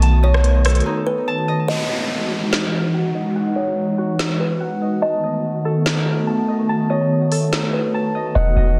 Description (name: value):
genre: hip hop, atmospheric cloud-rap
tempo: 144 BPM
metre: 4/4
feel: half-time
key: E major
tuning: A4 = 441 Hz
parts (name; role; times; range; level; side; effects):
- hollow soft pad; sustained chords; 0.0-8.8 s; D#3 to F#4; -23 LUFS; equal; ensemble chorus, low-pass filter
- Celtic harp; arpeggios; 0.0-8.8 s; D#4 to A5; -29 LUFS; equal; low-pass filter, delay
- clean 808-style bass; bass; 0.0-0.8, 8.4-8.8 s; E1 to B1; -16 LUFS; equal; none
- smooth R&B drum kit; drums; 0.0-7.6 s; hi-hat, rim click, snare drum; -26 LUFS; equal; vintage 12-bit sampler grit
- kalimba; melody; 0.2-8.8 s; B4 to D#5; -27 LUFS; equal; low-pass filter, delay
- downlifter; sound effects; 1.7-5.0 s; none; -30 LUFS; equal; none
room: light reverb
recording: dense, heavily limited modern master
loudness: -19 LUFS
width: mono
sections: 0.0-1.7 A section; 1.7-8.8 B section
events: break 0.9-1.7, 1.7-8.4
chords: 0.0 B7; 1.7 Emaj9; 5.0 B7